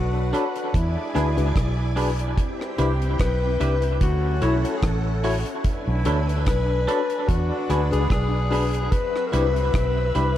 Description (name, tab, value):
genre	lovers rock reggae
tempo	73 BPM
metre	4/4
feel	swing 55% on 16ths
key	unclear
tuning	A4 = 440 Hz
part	breathy alto saxophone	melody	0.0-10.4 s	E4 to B4	-27 LUFS	left 4 dB	tape echo
part	string machine, violins	second line	0.0-10.4 s	C4 to G#5	-31 LUFS	equal	ensemble chorus, tape echo
part	warm horn section	second line	0.0-10.1 s	D3 to G#4	-37 LUFS	right 2 dB	tape echo
part	vintage muted fingered electric bass	bass	0.0-10.4 s	A1 to E2	-23 LUFS	equal	none
part	FM electric piano with tremolo	accompaniment	0.3-10.3 s	D4 to C#5	-30 LUFS	left 5 dB	tape echo
part	twangy electric guitar	stabs	0.3-10.3 s	D4 to C#5	-31 LUFS	right 3 dB	tape echo
part	deep reggae drum kit	drums	0.3-10.4 s	hi-hat, kick drum, rim click	-25 LUFS	equal	none
room	light reverb, small room reverb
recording	dark, warm production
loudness	-20 LUFS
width	side -12 dB against mid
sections	0.0-10.4 A section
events	none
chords	0.0 Bm7; 0.7 E7; 2.4 Cmaj7; 4.0 Dmaj9; 5.6 Bm7; 7.3 E7; 8.9 Cmaj7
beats	0.74 1.55 | 2.37 3.19 4.01 4.83 | 5.64 6.46 7.28 8.10 | 8.91 9.73